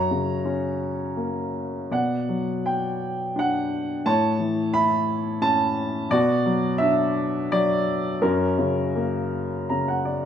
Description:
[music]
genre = classical, lyrical solo piano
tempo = 85 BPM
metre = 3/4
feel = uneven beats, rubato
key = B minor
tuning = A4 = 440 Hz
[part]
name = warm upright piano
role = solo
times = 0.0-10.3 s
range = F#2 to B5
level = -21 LUFS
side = equal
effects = none
[sound]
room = moderate recital hall reverb, RT60 1.4 s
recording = none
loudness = -21 LUFS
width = side -9 dB against mid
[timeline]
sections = 0.0-10.3 A section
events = upright piano fill 9.3-10.3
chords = 0.0 F#; 1.9 Bm; 4.1 A; 6.1 Bm; 8.2 F#

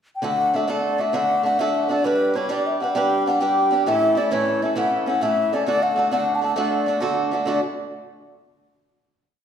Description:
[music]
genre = celtic folk, Celtic slide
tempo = 133 BPM (dotted quarters)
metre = 12/8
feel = straight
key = D major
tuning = A4 = 436 Hz
[part]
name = baroque flute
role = melody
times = 0.2-7.6 s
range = B4 to A5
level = -21 LUFS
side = left 2 dB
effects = none
[part]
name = picked swing-style acoustic guitar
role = accompaniment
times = 0.2-7.6 s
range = A2 to B4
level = -23 LUFS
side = right 2 dB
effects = none
[sound]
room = wet recital hall reverb, RT60 1.6 s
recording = recorded in a church or concert hall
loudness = -18 LUFS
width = side -8 dB against mid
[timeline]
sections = 0.0-0.2 pickup bar; 0.2-7.5 A section; 7.5-9.3 final chord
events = none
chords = 0.2 D; 2.0 G; 3.9 A; 5.7 D

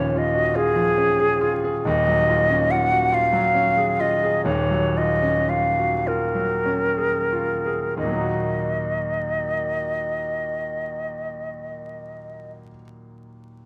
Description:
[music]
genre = classical, impressionist duo for flute and grand piano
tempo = 29-52 BPM (dotted quarters)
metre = 6/8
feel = rubato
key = Eb minor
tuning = A4 = 440 Hz
[part]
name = hollow concert flute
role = melody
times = 0.0-12.5 s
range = Ab4 to Gb5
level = -24 LUFS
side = equal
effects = none
[part]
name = clear grand piano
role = accompaniment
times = 0.0-13.7 s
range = Eb1 to Ab4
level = -27 LUFS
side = equal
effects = none
[sound]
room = moderate recital hall reverb, RT60 1.5 s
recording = close, detailed microphones, vinyl crackle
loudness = -22 LUFS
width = mono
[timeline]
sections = 0.0-8.0 A section; 8.0-11.8 B section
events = slowing down 0.6-8.0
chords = 0.0 Ebm11; 8.0 Ebm

